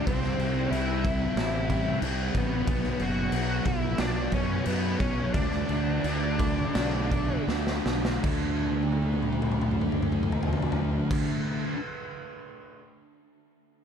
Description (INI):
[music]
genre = rock, shoegaze and dream pop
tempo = 78-92 BPM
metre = 4/4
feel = straight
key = D major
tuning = A4 = 439 Hz
[part]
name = octave-fuzz lead guitar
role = melody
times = 0.0-7.4 s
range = B3 to F#4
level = -34 LUFS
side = equal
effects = distortion, analog delay
[part]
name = thick fuzz guitar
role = riff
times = 0.0-11.8 s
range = B2 to D4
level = -30 LUFS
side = equal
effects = distortion, analog chorus
[part]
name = fuzz fingered electric bass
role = bass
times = 0.1-11.2 s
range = F#1 to F#2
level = -30 LUFS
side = equal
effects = overdrive
[part]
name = raw garage drum kit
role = drums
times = 0.1-12.8 s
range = crash cymbal, kick drum, snare drum, toms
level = -30 LUFS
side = equal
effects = none
[sound]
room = small room ambience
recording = dark, warm production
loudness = -25 LUFS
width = side -7 dB against mid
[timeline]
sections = 0.0-8.2 A section; 8.2-11.3 B section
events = slowing down 2.7-8.2; drum fill 7.5-8.2, 8.6-11.1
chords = 0.1 C; 2.7 B5; 5.3 D5